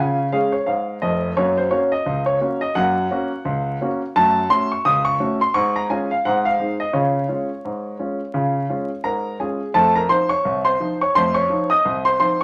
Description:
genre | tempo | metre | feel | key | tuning
ragtime piano | 86 BPM | 2/4 | swing 57% on 16ths | Db major | A4 = 440 Hz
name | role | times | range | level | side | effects
clear grand piano | solo | 0.0-12.4 s | F1 to Eb6 | -20 LUFS | equal | none
room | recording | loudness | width
wet studio reverb, RT60 0.6 s | vinyl crackle | -20 LUFS | mono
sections
0.0-9.7 A section; 9.7-12.4 B section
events
none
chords
0.0 Db; 1.4 Gb; 4.2 Gbm; 5.5 Db/Ab; 6.2 Ab; 6.9 Db; 9.7 F7

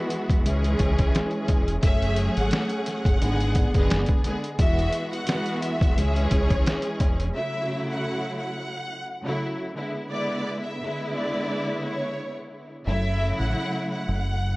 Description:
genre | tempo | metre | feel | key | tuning
hip hop, boom-bap hip-hop | 87 BPM | 4/4 | swing 54% on 16ths | F# minor | A4 = 440 Hz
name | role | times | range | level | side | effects
warm studio string section | accompaniment | 0.0-14.6 s | C#3 to G#4 | -28 LUFS | equal | cassette tape
hollow soft pad | sustained chords | 0.0-7.3 s | G#3 to F#5 | -37 LUFS | equal | none
trip hop sampler-style drum kit | drums | 0.1-7.3 s | hi-hat, kick drum, snare drum | -23 LUFS | equal | none
deep dub fingered electric bass | bass | 0.3-7.3, 12.9-14.6 s | E1 to C#2 | -25 LUFS | equal | none
warm studio violin section | melody | 1.8-14.6 s | C#5 to F#5 | -31 LUFS | equal | none
room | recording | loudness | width
little or no reverb | worn, warbling old tape, cassette tape, warbly pitch drift | -22 LUFS | side -22 dB against mid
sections
0.0-7.3 A section; 7.3-14.6 B section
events
break 0.0-1.8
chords
0.5 C#m; 1.8 F#madd9; 3.2 G#dim; 4.6 Eadd9; 6.0 C#m; 7.3 F#m7; 9.8 E7; 12.9 F#m7

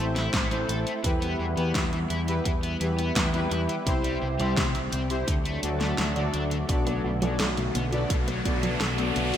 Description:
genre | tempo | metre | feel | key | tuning
synthwave | 85 BPM | 4/4 | straight | unclear | A4 = 439 Hz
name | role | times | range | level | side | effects
warm analog pad | sustained chords | 0.0-9.4 s | D3 to F#4 | -33 LUFS | equal | chorus, vintage 12-bit sampler grit, sidechain pumping
overdriven semi-hollow guitar | riff | 0.0-9.4 s | B2 to A4 | -34 LUFS | left 2 dB | analog chorus, low-pass filter, digital delay
analog synth brass | stabs | 0.0-9.4 s | B3 to D5 | -31 LUFS | left 1 dB | chorus, digital delay
overdriven picked electric bass | bass | 0.0-9.3 s | A1 to E2 | -30 LUFS | equal | sidechain pumping
pop drum kit | drums | 0.2-9.4 s | hi-hat, snare drum | -30 LUFS | equal | gated reverb
electronic kick drum | drums | 0.3-8.6 s | none | -29 LUFS | equal | none
analog pluck | arpeggios | 6.7-9.4 s | D3 to A4 | -34 LUFS | right 2 dB | none
riser | sound effects | 7.6-9.4 s | none | -34 LUFS | right 1 dB | none
room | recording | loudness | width
moderate plate reverb, RT60 3.0 s | bright 1980s-style digital production | -24 LUFS | side -10 dB against mid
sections
0.0-6.7 A section; 6.7-9.4 B section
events
kick drops out 6.0-6.7; riser 7.6-9.4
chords
0.0 Am; 1.0 Em; 3.9 C; 5.3 D; 6.7 Bm7

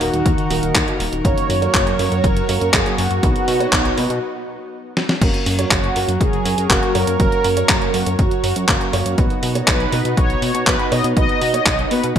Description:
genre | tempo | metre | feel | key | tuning
italo disco | 121 BPM | 4/4 | straight | F# major | A4 = 440 Hz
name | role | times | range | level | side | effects
mellow synth brass | melody | 0.0-12.2 s | F#4 to D#5 | -22 LUFS | right 1 dB | chorus, phaser, cassette tape, ping-pong delay
lush unison pad | sustained chords | 0.0-12.2 s | D#3 to C#5 | -24 LUFS | right 1 dB | chorus
dark baby grand piano | stabs | 0.0-12.0 s | A#3 to C#5 | -25 LUFS | right 4 dB | none
chorused synth bass | bass | 0.0-12.2 s | D#1 to B2 | -23 LUFS | equal | none
clean 12-bit digital drum machine | drums | 0.0-12.2 s | crash cymbal, handclaps, hi-hat, snare drum | -20 LUFS | equal | gated reverb
electronic kick drum | drums | 0.3-12.2 s | none | -20 LUFS | left 1 dB | none
room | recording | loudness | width
moderate plate reverb, RT60 2.1 s | bright 1980s-style digital production | -15 LUFS | side -9 dB against mid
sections
0.0-5.2 A section; 5.2-12.2 B section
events
break 4.2-5.2; drum fill 5.0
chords
0.0 D#m; 1.2 F#; 3.2 B; 5.2 F#; 9.2 B

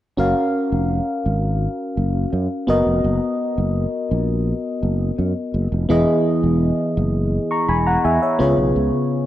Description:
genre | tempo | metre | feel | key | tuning
1980s-style pop | 84 BPM | 4/4 | straight | F# major | A4 = 440 Hz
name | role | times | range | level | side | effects
FM electric piano | accompaniment | 0.2-9.3 s | C#3 to C#6 | -19 LUFS | left 1 dB | chorus
sustaining fretless electric bass | bass | 0.2-8.9 s | E1 to F#2 | -20 LUFS | equal | analog chorus
room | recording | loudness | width
moderate plate reverb, RT60 2.7 s | dark, warm production | -17 LUFS | side -13 dB against mid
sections
0.2-9.3 A section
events
none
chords
0.2 F#maj7; 2.7 Bmaj7; 5.9 Emaj7; 8.4 C#7

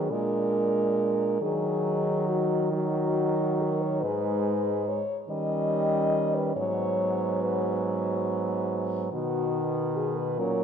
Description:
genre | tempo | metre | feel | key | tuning
classical, lyrical piece for horn quartet | 47 BPM (dotted quarters) | 6/8 | rubato | Eb minor | A4 = 440 Hz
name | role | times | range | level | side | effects
mellow French horn | melody | 0.0-10.6 s | Gb4 to Eb5 | -28 LUFS | left 4 dB | none
warm French horn | second line | 0.0-10.6 s | B3 to Eb4 | -34 LUFS | right 8 dB | none
warm French horn | accompaniment | 0.0-10.6 s | D#3 to Ab3 | -30 LUFS | equal | none
warm French horn | bass | 0.0-10.6 s | Ab2 to Eb3 | -31 LUFS | right 3 dB | none
room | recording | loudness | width
moderate concert hall reverb, RT60 2.2 s | dark, warm production | -25 LUFS | side -7 dB against mid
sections
0.0-10.6 A section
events
none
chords
0.1 Bb7; 1.4 Ebm; 4.0 Abm; 5.3 Eb7; 6.6 Abm7; 9.1 B

